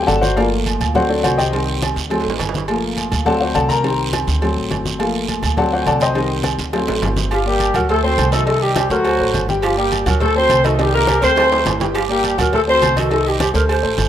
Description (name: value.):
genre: latin, salsa.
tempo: 207 BPM.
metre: 4/4.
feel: straight.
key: G harmonic minor.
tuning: A4 = 440 Hz.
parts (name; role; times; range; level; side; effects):
clear baby grand piano; accompaniment; 0.0-14.1 s; Eb3 to C6; -20 LUFS; left 2 dB; none.
upright bass; bass; 0.0-14.1 s; G1 to D2; -22 LUFS; right 1 dB; none.
agogo bells and timbales; percussion; 0.1-14.1 s; none; -26 LUFS; right 8 dB; none.
congas; percussion; 0.1-14.1 s; none; -26 LUFS; left 2 dB; none.
cowbell and bongos; percussion; 0.1-14.1 s; none; -30 LUFS; left 4 dB; none.
guiro; percussion; 0.1-14.1 s; none; -28 LUFS; right 8 dB; none.
dark horn section; melody; 7.3-13.6 s; F3 to C5; -17 LUFS; left 1 dB; none.
breathy large pan pipes; second line; 7.3-14.1 s; F#4 to C5; -24 LUFS; right 5 dB; none.
room: light reverb, small room ambience.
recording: rough home demo mix.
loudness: -14 LUFS.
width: side -10 dB against mid.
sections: 0.0-7.3 A section; 7.3-14.1 B section.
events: grand piano solo 0.0-7.3; drum fill 2.1-2.7, 6.7-7.3, 10.8-11.9.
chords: 0.4 Gm7; 1.0 D7; 1.5 Cm; 2.1 D7; 2.7 Gm7; 3.3 D7; 3.8 Cm; 4.4 D7; 5.0 Gm7; 5.6 D7; 6.2 Cm; 6.7 D7; 7.3 Gm7; 7.9 D7; 8.5 Cm; 9.1 D7; 9.6 Gm7; 10.2 D7; 10.8 Cm; 11.4 D5; 11.9 Gm; 12.5 D7; 13.1 Cm.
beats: 0.09 | 0.37 0.66 0.95 1.24 | 1.53 1.82 2.11 2.40 | 2.69 2.98 3.27 3.55 | 3.84 4.13 4.42 4.71 | 5.00 5.29 5.58 5.87 | 6.16 6.45 6.74 7.03 | 7.31 7.60 7.89 8.18 | 8.47 8.76 9.05 9.34 | 9.63 9.92 10.21 10.50 | 10.79 11.08 11.37 11.66 | 11.95 12.24 12.53 12.82 | 13.11 13.40 13.69 13.98.